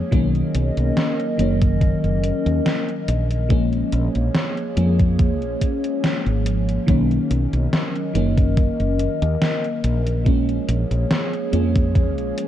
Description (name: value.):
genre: vaporwave.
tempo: 71 BPM.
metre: 4/4.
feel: swing 53% on 16ths.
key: B lydian.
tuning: A4 = 442 Hz.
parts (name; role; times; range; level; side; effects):
FM electric piano with soft pad layer; accompaniment; 0.0-12.5 s; D#3 to C#4; -23 LUFS; left 1 dB; phaser, wide subtle chorus, cassette tape, tape echo.
warbly tape-like pad; sustained chords; 0.0-12.5 s; A#3 to D#5; -28 LUFS; equal; chorus, built-in reverb.
woody fretless electric bass; bass; 0.1-12.3 s; F#1 to E#2; -21 LUFS; equal; none.
electronic kick drum; drums; 0.1-12.1 s; none; -18 LUFS; equal; overdrive, vintage 12-bit sampler grit.
gated 80s digital drum machine; drums; 0.1-12.5 s; hi-hat, snare drum; -24 LUFS; equal; gated reverb, gated reverb snare, overdrive, vintage 12-bit sampler grit.
room: digital ambience.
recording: dark, warm production, cassette tape.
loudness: -18 LUFS.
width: side -11 dB against mid.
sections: 0.0-12.5 A section.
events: none.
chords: 0.1 Bmaj7; 3.5 A#m7; 6.9 Bmaj7; 10.3 A#m7.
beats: | 0.12 0.97 1.81 2.66 | 3.50 4.35 5.19 6.04 | 6.88 7.73 8.57 9.42 | 10.27 11.11 11.96.